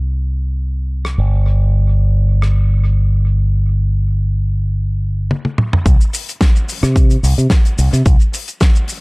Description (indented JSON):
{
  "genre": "nu-disco, nu disco",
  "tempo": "109 BPM",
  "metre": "4/4",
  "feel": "swing 53% on 16ths",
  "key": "unclear",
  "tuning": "A4 = 440 Hz",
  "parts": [
    { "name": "fingered electric bass with an envelope filter", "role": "bass", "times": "0.0-8.2 s", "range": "G1 to C3", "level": "-14 LUFS", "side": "equal", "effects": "none" },
    { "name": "damped 70s drum kit", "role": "drums", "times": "1.0-9.0 s", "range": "hi-hat, rim click, shaker, snare drum, toms", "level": "-19 LUFS", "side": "equal", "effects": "tape echo" },
    { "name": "electronic kick drum", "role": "drums", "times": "5.9-8.7 s", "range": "none", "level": "-11 LUFS", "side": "equal", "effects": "none" }
  ],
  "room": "little or no reverb",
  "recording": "echo-heavy mix",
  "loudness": "-12 LUFS",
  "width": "side -31 dB against mid",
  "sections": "0.0-5.9 A section; 5.9-9.0 B section",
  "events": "filter sweep on drum 0.0-5.9; drum fill 5.3-5.9; drop 5.9-9.0",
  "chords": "none"
}